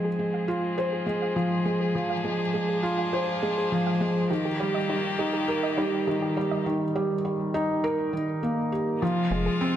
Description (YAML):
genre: piano and strings electronica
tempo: 102 BPM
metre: 4/4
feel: straight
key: F dorian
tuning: A4 = 440 Hz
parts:
  - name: rich string quartet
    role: sustained chords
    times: 0.0-9.8 s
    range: C3 to Ab4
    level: -32 LUFS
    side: left 2 dB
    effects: low-pass filter
  - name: soft round pluck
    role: arpeggios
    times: 0.0-9.5 s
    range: Eb4 to F5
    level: -35 LUFS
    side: right 2 dB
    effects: chorus, digital delay
  - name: felt-muted upright piano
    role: riff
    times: 0.0-9.8 s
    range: Eb3 to C5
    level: -25 LUFS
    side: equal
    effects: digital delay
  - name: round analog bass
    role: bass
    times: 9.3-9.5 s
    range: F1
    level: -29 LUFS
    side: equal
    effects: none
room: wet recital hall reverb, RT60 1.5 s, small room ambience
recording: none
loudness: -24 LUFS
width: side -10 dB against mid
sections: 0.0-9.0 A section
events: build-up 0.0-9.0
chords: 0.0 Fm; 4.3 Eb; 9.0 Fm